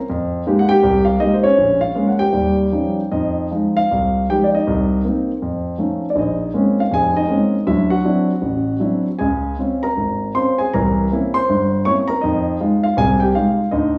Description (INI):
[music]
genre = solo jazz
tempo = 159 BPM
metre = 4/4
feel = swing 63% on 8ths, rubato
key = F minor from 3.1 s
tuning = A4 = 440 Hz
[part]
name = warm grand piano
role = solo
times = 0.0-14.0 s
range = F1 to Db6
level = -18 LUFS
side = equal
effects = none
[sound]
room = wet large studio reverb, RT60 0.8 s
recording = band playing live in one room, small room reverb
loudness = -18 LUFS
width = mono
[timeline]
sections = 0.0-3.1 A section; 3.1-14.0 B section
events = none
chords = 0.1 Fm11; 1.6 Bbm7; 2.3 Eb9; 3.1 Fm7; 4.7 Cm7; 5.4 Faug7; 6.2 Bbm9; 7.7 D9; 9.2 Dbmaj7; 10.7 C7b9; 12.2 Fm7